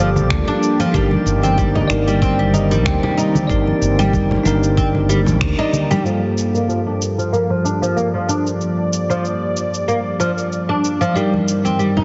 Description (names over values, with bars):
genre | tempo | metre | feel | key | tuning
organic downtempo | 94 BPM | 4/4 | swing 55% on 16ths | G minor | A4 = 440 Hz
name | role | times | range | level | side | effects
bell-like tine electric piano | accompaniment | 0.0-12.0 s | G2 to D5 | -25 LUFS | equal | sidechain pumping, low-pass filter, tape echo
warm analog pad | sustained chords | 0.0-12.0 s | G2 to D5 | -25 LUFS | equal | chorus, sidechain pumping
oud | arpeggios | 0.0-12.0 s | F3 to Eb4 | -22 LUFS | equal | low-pass filter, tape echo
mellow fretless electric bass | bass | 0.0-5.5 s | G1 to D2 | -21 LUFS | equal | none
drifting glass-harmonics texture | texture | 0.0-6.1 s | D4 to D5 | -35 LUFS | equal | chorus, built-in reverb
electronic congas, shaker and finger snaps | drums | 0.2-11.9 s | none | -27 LUFS | equal | overdrive
congas | percussion | 0.2-6.0, 11.3-12.0 s | none | -28 LUFS | equal | none
electronic kick drum | drums | 0.3-5.6 s | none | -24 LUFS | equal | overdrive
room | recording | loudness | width
moderate lush hall reverb, RT60 2.5 s | heavily compressed radio sound, nothing above 7.8 kHz | -17 LUFS | mono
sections
0.0-6.0 A section; 6.0-12.0 B section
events
band accent 5.4-5.7; filter sweep on oud 6.0-12.0; filter sweep on tine electric piano 6.0-12.0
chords
0.0 Gm7; 0.9 Cm7/G; 6.0 Gm7; 11.2 Cm7/G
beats
0.30 | 0.94 1.58 2.22 2.86 | 3.50 4.13 4.77 5.41 | 6.05 6.69 7.33 7.96 | 8.60 9.24 9.88 10.52 | 11.16 11.79